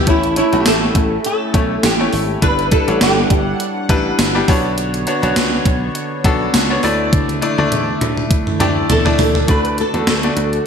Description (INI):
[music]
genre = 1980s-style pop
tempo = 102 BPM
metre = 4/4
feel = swing 55% on 16ths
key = unclear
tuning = A4 = 440 Hz
[part]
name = bright grand piano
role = accompaniment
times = 0.0-10.7 s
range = G3 to A5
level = -19 LUFS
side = left 3 dB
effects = none
[part]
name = chorused pulse-width pad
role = sustained chords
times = 0.6-10.7 s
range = D3 to F#5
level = -25 LUFS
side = right 1 dB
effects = none
[part]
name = flamenco guitar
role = melody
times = 0.1-3.6, 8.6-10.7 s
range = E4 to B4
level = -18 LUFS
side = right 1 dB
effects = ensemble chorus
[part]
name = dry thumbed slap bass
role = bass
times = 0.1-10.6 s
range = G1 to E2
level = -22 LUFS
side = right 1 dB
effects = none
[part]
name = gated 80s digital drum machine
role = drums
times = 0.1-10.7 s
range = hi-hat, kick drum, snare drum, tambourine, toms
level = -17 LUFS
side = right 1 dB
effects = gated reverb, gated reverb snare, overdrive
[sound]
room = moderate lush hall reverb, RT60 2.1 s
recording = bright 1980s-style digital production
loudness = -13 LUFS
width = side -6 dB against mid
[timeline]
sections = 0.1-9.5 A section; 9.5-10.7 B section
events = drum fill 7.1-9.5; grand piano fill 8.3-9.5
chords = 0.1 A; 2.4 Em7/G; 4.5 Bmadd9; 6.8 Dsus2; 9.5 D